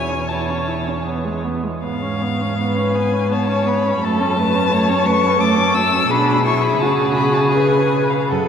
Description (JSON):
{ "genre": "classical, slow romantic movement for string quartet", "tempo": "74-89 BPM", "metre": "3/4", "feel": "rubato", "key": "F# minor", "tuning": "A4 = 440 Hz", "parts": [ { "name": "muted violin", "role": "melody", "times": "0.0-8.5 s", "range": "E#5 to E6", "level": "-21 LUFS", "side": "left 4 dB", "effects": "none" }, { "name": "muted violin", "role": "second line", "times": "0.0-8.5 s", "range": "G#4 to C#5", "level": "-21 LUFS", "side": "left 2 dB", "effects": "none" }, { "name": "muted viola", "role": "accompaniment", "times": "0.0-8.5 s", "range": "G#3 to B4", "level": "-21 LUFS", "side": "right 2 dB", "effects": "none" }, { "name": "muted cello", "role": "bass", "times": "0.0-8.5 s", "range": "E2 to C#3", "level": "-21 LUFS", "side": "right 1 dB", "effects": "none" } ], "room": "wet cathedral reverb, RT60 6.1 s", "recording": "none", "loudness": "-15 LUFS", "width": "side -8 dB against mid", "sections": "0.0-8.5 A section", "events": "none", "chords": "0.0 A/E; 1.1 E; 1.8 C#7/G#; 4.0 F#m; 6.1 G#dim/B; 6.8 F#m/C#; 7.5 C#5", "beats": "0.30 1.06 | 1.84 2.59 3.32 | 4.03 4.72 5.40 | 6.09 6.81 7.53 | 8.30" }